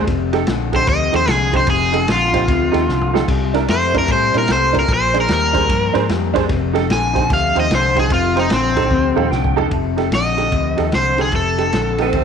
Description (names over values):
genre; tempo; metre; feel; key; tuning
electric blues shuffle; 149 BPM; 4/4; swing 64% on 8ths; F mixolydian; A4 = 440 Hz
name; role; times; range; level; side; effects
overdriven semi-hollow guitar; melody; 0.0-12.2 s; C4 to Ab5; -18 LUFS; equal; slapback echo
electric guitar through a small old amp; riff; 0.0-12.2 s; F2 to A3; -22 LUFS; left 14 dB; spring reverb
vintage muted fingered electric bass; bass; 0.0-12.2 s; F1 to Bb2; -22 LUFS; equal; none
vintage drum kit; drums; 0.1-12.2 s; crash cymbal, kick drum, ride cymbal, snare drum, toms; -23 LUFS; equal; none
honky-tonk upright piano; accompaniment; 0.3-12.1 s; D4 to A5; -22 LUFS; right 11 dB; none
growling tenor saxophone; second line; 12.0-12.2 s; C4; -18 LUFS; right 10 dB; none
room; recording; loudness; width
light reverb, small room ambience; 1960s-style stereo with parts hard left and right; -14 LUFS; side -7 dB against mid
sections
0.0-9.7 A section; 9.7-12.2 B section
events
overdriven electric guitar solo 0.0-9.7; drum fill 2.9-3.3, 8.9-9.7; honky-tonk piano fill 8.9-9.7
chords
0.1 F9; 3.3 C9; 4.9 Bb9; 6.5 F9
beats
| 0.07 0.47 0.87 1.27 | 1.67 2.08 2.48 2.88 | 3.28 3.68 4.08 4.49 | 4.89 5.29 5.69 6.09 | 6.49 6.89 7.30 7.70 | 8.10 8.50 8.91 9.31 | 9.71 10.12 10.52 10.92 | 11.33 11.73 12.13